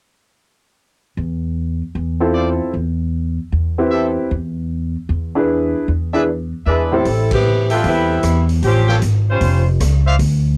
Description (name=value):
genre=jazz, big band swing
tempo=153 BPM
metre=4/4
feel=swing 65% on 8ths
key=A minor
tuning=A4 = 439 Hz
part: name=upright bass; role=bass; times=1.2-10.6 s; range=E#1 to E2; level=-20 LUFS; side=equal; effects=none
part: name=clear upright piano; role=accompaniment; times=2.2-7.0 s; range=A2 to C5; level=-19 LUFS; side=equal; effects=cassette tape
part: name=clear trumpet section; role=stabs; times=2.3-10.2 s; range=F4 to G5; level=-23 LUFS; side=equal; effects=cassette tape
part: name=mellow saxophone section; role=melody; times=6.7-9.7 s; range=E3 to B#4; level=-20 LUFS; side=equal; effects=cassette tape
part: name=swinging big-band drum kit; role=drums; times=7.1-10.3 s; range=hi-hat, kick drum, ride cymbal, rim click, snare drum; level=-30 LUFS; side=equal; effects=none
room=light reverb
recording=home recording on cassette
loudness=-18 LUFS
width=mono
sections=0.8-7.1 A section; 7.1-10.6 B section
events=band accent 7.3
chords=0.8 N.C.; 2.3 Dm7 (rootless); 3.9 E7; 7.1 Am9; 8.6 A7alt